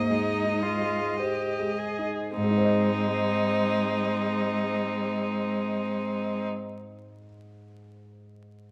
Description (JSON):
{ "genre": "classical, slow romantic movement for piano quartet", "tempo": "49-58 BPM", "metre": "3/4", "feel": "rubato", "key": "Ab major", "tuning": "A4 = 440 Hz", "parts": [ { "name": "rich violin", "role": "melody", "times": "0.0-6.5 s", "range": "Eb4 to Eb5", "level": "-33 LUFS", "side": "equal", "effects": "none" }, { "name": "clear cello", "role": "second line", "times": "0.0-6.5 s", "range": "Ab3 to Bb3", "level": "-32 LUFS", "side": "equal", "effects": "none" }, { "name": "warm grand piano", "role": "accompaniment", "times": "0.0-8.7 s", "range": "Ab2 to Eb5", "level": "-34 LUFS", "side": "equal", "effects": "none" }, { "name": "rich viola", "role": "accompaniment", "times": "0.1-6.5 s", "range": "C4 to Ab4", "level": "-34 LUFS", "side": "equal", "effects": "none" } ], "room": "wet recital hall reverb, RT60 1.5 s", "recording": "close, detailed microphones, vinyl crackle", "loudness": "-27 LUFS", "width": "mono", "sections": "0.0-2.4 A section; 2.4-5.7 B section", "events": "slowing down 0.0-2.4", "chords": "0.0 Ab" }